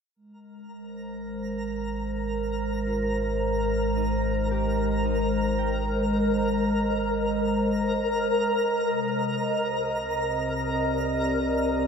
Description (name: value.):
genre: ambient.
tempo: 55 BPM.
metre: 4/4.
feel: straight.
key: Ab major.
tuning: A4 = 440 Hz.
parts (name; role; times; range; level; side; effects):
deep rumbling drone; bass; 1.3-11.9 s; Ab1 to C2; -33 LUFS; equal; built-in reverb.
twinkling granular texture; texture; 0.7-11.9 s; Bb4 to Bb5; -29 LUFS; left 2 dB; built-in reverb, shimmer reverb.
warbly tape-like pad; sustained chords; 0.6-11.9 s; C3 to Eb5; -26 LUFS; right 1 dB; chorus, built-in reverb, shimmer reverb.
concert harp; arpeggios; 2.9-10.8 s; Eb4 to G5; -45 LUFS; right 1 dB; none.
room: wet concert hall reverb, RT60 2.0 s.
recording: none.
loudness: -24 LUFS.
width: side -6 dB against mid.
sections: 0.1-11.9 A section.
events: filter sweep on ambient pad 0.1-11.9.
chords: 0.1 Abadd9; 8.9 Cmadd9.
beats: | 0.14 1.23 2.32 3.41 | 4.50 5.59 6.68 7.78 | 8.87 9.96 11.05.